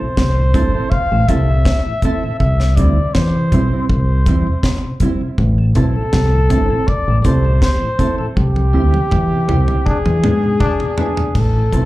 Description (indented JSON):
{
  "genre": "roots reggae",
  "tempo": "80 BPM",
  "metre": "4/4",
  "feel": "straight",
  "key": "A minor",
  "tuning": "A4 = 440 Hz",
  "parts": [
    { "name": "mellow flugelhorn", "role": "melody", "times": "0.0-11.9 s", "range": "G4 to F5", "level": "-21 LUFS", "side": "left 1 dB", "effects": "tape echo, plate reverb, slapback echo" },
    { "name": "mellow tonewheel organ", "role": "accompaniment", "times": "0.0-11.8 s", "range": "E2 to E4", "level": "-26 LUFS", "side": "left 2 dB", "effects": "slow rotary speaker, plate reverb" },
    { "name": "deep dub fingered electric bass", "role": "bass", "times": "0.2-11.9 s", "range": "G1 to G#2", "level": "-14 LUFS", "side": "equal", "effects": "none" },
    { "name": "deep reggae drum kit", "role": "drums", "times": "0.2-11.9 s", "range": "crash cymbal, hi-hat, kick drum, snare drum, toms", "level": "-18 LUFS", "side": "equal", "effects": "none" },
    { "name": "mellow electric guitar", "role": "accompaniment", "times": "0.5-11.9 s", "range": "G3 to A4", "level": "-23 LUFS", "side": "right 4 dB", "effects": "tape echo, plate reverb, slapback echo" },
    { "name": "warm trombone", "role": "second line", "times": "9.9-11.1 s", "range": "D4", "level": "-25 LUFS", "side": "left 3 dB", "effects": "tape echo, plate reverb, slapback echo" }
  ],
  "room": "light reverb",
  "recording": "live gig heard through the venue's PA, club reverb",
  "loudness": "-13 LUFS",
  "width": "side -17 dB against mid",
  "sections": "0.0-11.4 A section",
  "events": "drum fill 8.4-11.4; band accent 8.4-11.4",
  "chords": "0.0 Am; 2.4 C; 5.4 Am; 8.4 C; 9.9 E7; 11.4 Am"
}